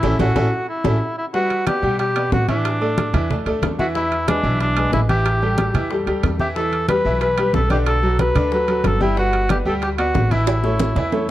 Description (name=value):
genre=latin, salsa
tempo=184 BPM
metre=4/4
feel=straight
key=unclear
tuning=A4 = 440 Hz
part: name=mellow cor anglais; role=melody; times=0.0-11.3 s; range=D4 to B4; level=-21 LUFS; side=equal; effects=none
part: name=bright grand piano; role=accompaniment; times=0.0-11.3 s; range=D3 to G5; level=-23 LUFS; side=equal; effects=none
part: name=upright bass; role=bass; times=0.0-11.3 s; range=G1 to B2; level=-22 LUFS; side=equal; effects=none
part: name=bongos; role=percussion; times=0.0-11.2 s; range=none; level=-30 LUFS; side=left 6 dB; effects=none
part: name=congas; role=percussion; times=0.0-11.3 s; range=none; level=-24 LUFS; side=equal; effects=none
part: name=timbales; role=percussion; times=0.0-11.2 s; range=none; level=-28 LUFS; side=right 6 dB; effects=none
room=light reverb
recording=dark, warm production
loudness=-16 LUFS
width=side -14 dB against mid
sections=0.0-1.3 A section; 1.3-11.3 A section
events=band accent 0.0-1.3; drum fill 0.4-1.3, 10.5-11.3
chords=0.0 A; 1.3 Gmaj7; 2.6 Asus4; 4.0 E7; 5.3 A5; 6.6 Em7; 7.9 Bm7; 9.2 Gmaj7; 10.5 A